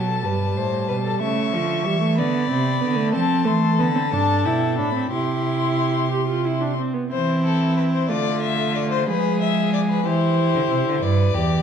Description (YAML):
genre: classical, baroque-style fugue for string quartet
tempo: 61 BPM (dotted quarters)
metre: 6/8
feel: straight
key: C major from 3.1 s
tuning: A4 = 440 Hz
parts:
  - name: rich violin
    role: melody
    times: 0.0-11.6 s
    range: A4 to C#6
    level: -26 LUFS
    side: left 10 dB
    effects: none
  - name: warm viola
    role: accompaniment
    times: 0.0-11.0 s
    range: F3 to G4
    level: -23 LUFS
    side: right 2 dB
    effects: none
  - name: rich cello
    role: bass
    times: 0.0-11.6 s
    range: E2 to F3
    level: -23 LUFS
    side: right 4 dB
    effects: none
  - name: rich violin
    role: second line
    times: 0.1-11.6 s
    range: E4 to E5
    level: -28 LUFS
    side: left 4 dB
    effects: none
room: wet recital hall reverb, RT60 1.5 s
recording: dark, warm production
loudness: -18 LUFS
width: side -7 dB against mid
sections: 0.0-7.1 A section; 7.1-11.6 B section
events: none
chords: 0.3 Gadd9; 1.2 A7/C#; 2.2 D5; 3.1 Dm7; 4.1 G; 5.1 C; 7.1 C/E; 8.1 Dm; 9.1 Bdim7(no3)/F; 10.1 C/E; 11.0 G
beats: 0.25 | 1.22 2.18 | 3.14 4.12 | 5.12 6.12 | 7.12 8.11 | 9.09 10.06 | 11.02